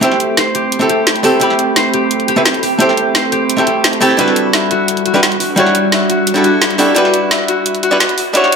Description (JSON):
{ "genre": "liquid drum and bass", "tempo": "173 BPM", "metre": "4/4", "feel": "straight", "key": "A dorian", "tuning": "A4 = 440 Hz", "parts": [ { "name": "archtop guitar, miked and amplified", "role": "accompaniment", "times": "0.0-8.6 s", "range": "G3 to B5", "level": "-14 LUFS", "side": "right 1 dB", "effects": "dub echo" }, { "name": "ethereal airy pad", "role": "sustained chords", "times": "0.0-8.6 s", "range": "G3 to B5", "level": "-20 LUFS", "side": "right 1 dB", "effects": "ensemble chorus, built-in reverb, phaser" }, { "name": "concert harp", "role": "arpeggios", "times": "0.0-8.6 s", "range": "F#4 to E5", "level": "-17 LUFS", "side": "left 2 dB", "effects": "dub echo" }, { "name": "drum and bass drum kit", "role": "drums", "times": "0.0-8.6 s", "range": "hi-hat, snare drum", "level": "-16 LUFS", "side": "right 1 dB", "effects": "high-pass filter on hats, high-pass filter on snare, high-pass filter on room" } ], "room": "wet digital room reverb, RT60 1.3 s, digital ambience", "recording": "high-pass filter", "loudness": "-10 LUFS", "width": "side -5 dB against mid", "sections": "0.0-8.6 A section", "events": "build-up 0.0-8.6", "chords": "0.0 Am9; 4.2 Em9" }